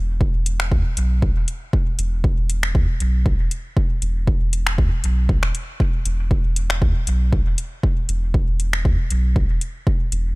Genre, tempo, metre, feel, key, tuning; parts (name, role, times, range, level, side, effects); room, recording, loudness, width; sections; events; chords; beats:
dub techno; 118 BPM; 4/4; swing 54% on 16ths; A4 = 440 Hz
warm sub bass; bass; 0.0-10.4 s; E1 to E2; -20 LUFS; equal; sidechain pumping
electronic kick drum; drums; 0.2-10.0 s; -19 LUFS; equal; studio reverb
soft vintage rhythm box; drums; 0.5-10.2 s; finger snaps, hi-hat; -27 LUFS; left 1 dB; overdrive, studio reverb, dub echo
little or no reverb; -18 LUFS; side -25 dB against mid
0.0-10.4 A section
0.21 0.72 1.22 | 1.73 2.24 2.75 3.26 | 3.77 4.28 4.78 5.29 | 5.80 6.31 6.82 7.33 | 7.83 8.34 8.85 9.36 | 9.87